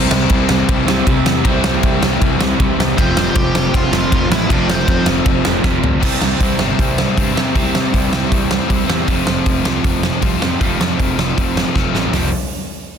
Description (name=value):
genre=punk rock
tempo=157 BPM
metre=4/4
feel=straight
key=F major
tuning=A4 = 440 Hz
part: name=biting overdriven guitar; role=riff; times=0.0-12.3 s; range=F2 to F4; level=-20 LUFS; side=left 13 dB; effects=none
part: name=overdriven electric guitar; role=riff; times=0.0-12.4 s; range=F2 to C4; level=-20 LUFS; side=right 13 dB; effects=none
part: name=fuzz picked electric bass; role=bass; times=0.0-12.3 s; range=F1 to C3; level=-21 LUFS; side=equal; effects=overdrive
part: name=big rock drum kit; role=drums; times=0.1-12.2 s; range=crash cymbal, hi-hat, kick drum, ride cymbal, snare drum, toms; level=-17 LUFS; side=equal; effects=none
part: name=nasal lead guitar with a parked wah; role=melody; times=3.0-5.1 s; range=C4 to G5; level=-24 LUFS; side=equal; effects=overdrive, ping-pong delay
room=little or no reverb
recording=dense, heavily limited modern master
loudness=-13 LUFS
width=side -7 dB against mid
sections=0.0-6.0 A section; 6.0-12.1 B section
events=drum fill 5.6-6.0, 11.8-12.1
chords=0.0 C; 3.0 F; 6.0 C; 9.1 F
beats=0.30 0.69 1.07 | 1.45 1.83 2.21 2.59 | 2.97 3.35 3.73 4.11 | 4.50 4.88 5.26 5.64 | 6.02 6.40 6.78 7.17 | 7.55 7.93 8.31 8.70 | 9.08 9.46 9.84 10.22 | 10.61 10.99 11.37 11.75 | 12.13